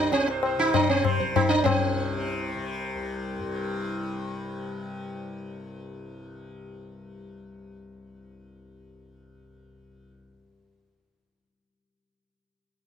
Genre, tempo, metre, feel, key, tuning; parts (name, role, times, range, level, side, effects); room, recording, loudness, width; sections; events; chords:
indian classical, Hindustani; 196 BPM; 7/4; straight; A4 = 441 Hz
sitar; melody; 0.0-4.9 s; C4 to C5; -24 LUFS; right 3 dB
tanpura; drone; 0.0-10.5 s; C2 to C3; -34 LUFS; left 2 dB
tabla; percussion; 0.1-1.8 s; -26 LUFS; left 7 dB
moderate small room reverb, RT60 0.5 s; -24 LUFS; side -8 dB against mid
0.0-1.7 A section; 1.7-3.8 B section